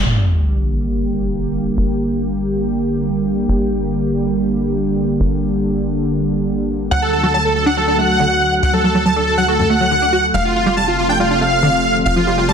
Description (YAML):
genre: trance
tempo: 140 BPM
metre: 4/4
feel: straight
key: G minor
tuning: A4 = 440 Hz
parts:
  - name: lush unison pad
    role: sustained chords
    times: 0.0-12.5 s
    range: C3 to G4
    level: -19 LUFS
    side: equal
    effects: chorus
  - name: tight sequencer bass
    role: bass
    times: 0.0-12.5 s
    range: F1 to D2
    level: -24 LUFS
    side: equal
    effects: none
  - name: sub drop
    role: sound effects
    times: 0.1-1.8 s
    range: none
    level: -18 LUFS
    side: equal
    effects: none
  - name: dense compressed supersaw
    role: melody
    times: 6.9-12.5 s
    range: F4 to A5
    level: -15 LUFS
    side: right 1 dB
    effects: tape echo
  - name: tight sequenced synth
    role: arpeggios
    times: 6.9-12.5 s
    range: F#2 to F#4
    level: -20 LUFS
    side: right 1 dB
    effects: chorus, phaser, tape echo
room: moderate digital room reverb, RT60 1.1 s, digital ambience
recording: dense, heavily limited modern master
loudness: -14 LUFS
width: side -7 dB against mid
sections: 0.1-12.5 A section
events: impact 0.1-1.8; filter sweep on analog synth pad 0.1-12.5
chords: 0.1 Gm; 6.9 D; 10.3 F